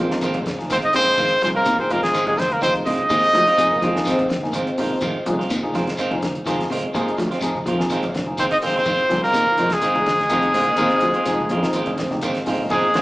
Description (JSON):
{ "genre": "afrobeat", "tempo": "125 BPM", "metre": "4/4", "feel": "straight", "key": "F dorian", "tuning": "A4 = 440 Hz", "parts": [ { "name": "muted trombone section", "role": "second line", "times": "0.0-5.5, 10.3-12.6 s", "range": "Ab3 to C4", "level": "-27 LUFS", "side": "left 1 dB", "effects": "none" }, { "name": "electric guitar at the edge of break-up", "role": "arpeggios", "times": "0.0-13.0 s", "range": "C3 to F3", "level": "-30 LUFS", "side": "left 1 dB", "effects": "none" }, { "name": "clean electric guitar", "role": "stabs", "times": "0.0-13.0 s", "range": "Eb3 to F4", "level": "-26 LUFS", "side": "right 2 dB", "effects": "spring reverb" }, { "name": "fingered electric bass", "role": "bass", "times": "0.0-13.0 s", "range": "F1 to F2", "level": "-28 LUFS", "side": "equal", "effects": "none" }, { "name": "barky tine electric piano", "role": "accompaniment", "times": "0.1-12.9 s", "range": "F3 to Bb4", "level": "-28 LUFS", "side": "left 1 dB", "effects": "overdrive, phaser" }, { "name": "cloth-damped thuddy drum kit", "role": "drums", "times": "0.1-13.0 s", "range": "hi-hat, kick drum, snare drum", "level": "-32 LUFS", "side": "equal", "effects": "none" }, { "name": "congas", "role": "percussion", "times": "0.2-13.0 s", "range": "none", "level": "-33 LUFS", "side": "equal", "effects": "none" }, { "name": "shekere", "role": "percussion", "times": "0.2-13.0 s", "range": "none", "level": "-34 LUFS", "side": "left 1 dB", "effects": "none" }, { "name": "bright trumpet", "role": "melody", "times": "0.7-4.3, 8.4-13.0 s", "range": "Ab4 to Eb5", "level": "-18 LUFS", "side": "equal", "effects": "none" }, { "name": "raspy tenor saxophone", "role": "second line", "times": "0.7-4.3, 8.4-13.0 s", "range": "Ab3 to Eb4", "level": "-29 LUFS", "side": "right 1 dB", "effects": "none" } ], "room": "wet large studio reverb, RT60 1.3 s", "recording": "band playing live in one room, small speaker sound", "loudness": "-17 LUFS", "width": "side -19 dB against mid", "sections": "0.0-12.7 A section", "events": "drum fill 12.1-12.7", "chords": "0.0 Fm7" }